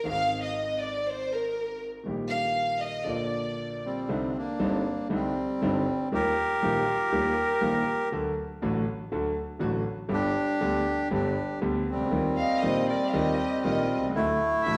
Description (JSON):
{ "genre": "tango", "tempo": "120 BPM", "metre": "4/4", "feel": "rubato", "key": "C minor from 4.1 s", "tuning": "A4 = 441 Hz", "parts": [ { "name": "warm chamber violin section", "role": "second line", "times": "0.0-3.8, 12.4-14.8 s", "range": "Bb4 to F5", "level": "-32 LUFS", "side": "equal", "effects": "none" }, { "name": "clear concert grand piano", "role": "accompaniment", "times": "0.0-14.8 s", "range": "G1 to Ab4", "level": "-32 LUFS", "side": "equal", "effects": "none" }, { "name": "bandoneon", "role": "melody", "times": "3.8-14.8 s", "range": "G3 to Bb4", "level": "-30 LUFS", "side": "equal", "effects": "none" }, { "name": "reedy silver concert flute", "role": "second line", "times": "6.6-8.1, 12.4-14.0 s", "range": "F4 to Eb5", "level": "-36 LUFS", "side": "equal", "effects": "none" } ], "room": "wet large studio reverb, RT60 1.3 s", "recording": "heard from further back in the room", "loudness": "-28 LUFS", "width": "mono", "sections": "0.0-4.1 A section; 4.1-14.8 B section", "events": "violin section solo 0.0-4.1", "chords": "0.1 Ab; 2.1 Eb/Bb; 3.1 Bb; 4.1 Cmadd9; 6.1 Ebadd9; 8.1 D; 10.1 G; 12.1 Ebadd9; 14.1 D" }